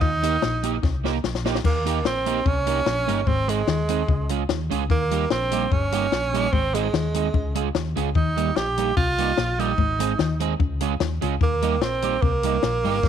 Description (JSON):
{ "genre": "ska", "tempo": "147 BPM", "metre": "4/4", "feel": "swing 53% on 8ths", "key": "Eb mixolydian", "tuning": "A4 = 444 Hz", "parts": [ { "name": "clear tenor saxophone", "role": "melody", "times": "0.0-13.1 s", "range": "Ab3 to G4", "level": "-24 LUFS", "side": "right 4 dB", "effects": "slapback echo" }, { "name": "mellow electric guitar", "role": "riff", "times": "0.0-13.1 s", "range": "G2 to Eb3", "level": "-32 LUFS", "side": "left 11 dB", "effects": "none" }, { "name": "hollow-body short-scale fingered electric bass", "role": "bass", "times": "0.0-13.1 s", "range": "G1 to Eb2", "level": "-26 LUFS", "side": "left 1 dB", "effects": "none" }, { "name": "compact cocktail drum kit", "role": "drums", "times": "0.0-13.1 s", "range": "crash cymbal, hi-hat, kick drum, snare drum", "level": "-25 LUFS", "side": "left 4 dB", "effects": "none" }, { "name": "electric guitar at the edge of break-up", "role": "accompaniment", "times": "0.2-13.0 s", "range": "G3 to Bb4", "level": "-28 LUFS", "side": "right 15 dB", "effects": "analog chorus" } ], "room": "light reverb", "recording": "1960s-style stereo with parts hard left and right", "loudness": "-20 LUFS", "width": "side -8 dB against mid", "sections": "0.0-1.6 A section; 1.6-13.1 B section", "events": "drum fill 0.8-1.6", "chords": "0.0 Eb; 3.3 Ab; 4.1 Db; 4.9 Eb; 6.5 Ab; 7.3 Db; 8.2 Eb; 9.8 Ab; 10.6 Db; 11.4 Eb" }